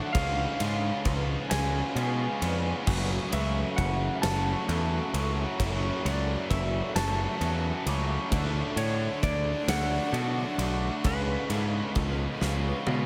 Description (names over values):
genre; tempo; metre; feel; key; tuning
post-rock; 44 BPM (dotted quarters); 6/8; straight; F# minor; A4 = 440 Hz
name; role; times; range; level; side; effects
clean lap steel guitar; melody; 0.0-13.1 s; B4 to A5; -36 LUFS; equal; diffuse ambient delay
granular cloud pad; sustained chords; 0.0-13.1 s; D4 to A5; -44 LUFS; equal; none
felt-muted upright piano; arpeggios; 0.0-13.1 s; A4 to D6; -48 LUFS; equal; none
twangy electric guitar; arpeggios; 0.0-13.1 s; F#2 to F#4; -43 LUFS; equal; none
biting overdriven guitar; riff; 0.0-13.1 s; F#2 to D4; -37 LUFS; equal; spring reverb
crunchy overdriven guitar; riff; 0.0-13.1 s; F#2 to F#4; -39 LUFS; equal; subtle chorus
overdriven picked electric bass; bass; 0.1-13.1 s; F#1 to B2; -32 LUFS; equal; none
huge arena drum kit; drums; 0.1-13.1 s; crash cymbal, kick drum, ride cymbal, snare drum, toms; -36 LUFS; equal; none
room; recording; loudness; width
moderate huge ambient reverb, RT60 7.9 s; dreamy mix soaked in reverb; -28 LUFS; mono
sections
0.0-13.1 A section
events
drum fill 12.4-13.1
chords
0.1 C#7; 2.9 F#m7; 8.3 D; 11.0 C#7